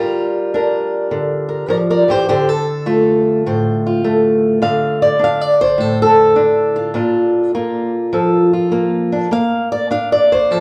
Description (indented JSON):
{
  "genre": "acoustic country blues, solo or duo",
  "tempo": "103 BPM",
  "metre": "4/4",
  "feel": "swing 67% on 8ths",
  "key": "D minor",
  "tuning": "A4 = 440 Hz",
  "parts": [
    { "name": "fingerpicked swing-style acoustic guitar", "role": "solo", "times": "0.0-10.6 s", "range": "A2 to F5", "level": "-15 LUFS", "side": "equal", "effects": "none" }
  ],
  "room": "moderate large studio reverb, RT60 0.9 s",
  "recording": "band playing live in one room",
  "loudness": "-15 LUFS",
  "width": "mono",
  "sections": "0.0-10.6 A section",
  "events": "none",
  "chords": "0.0 Gm7; 2.3 Dm7; 7.0 Bbmaj7"
}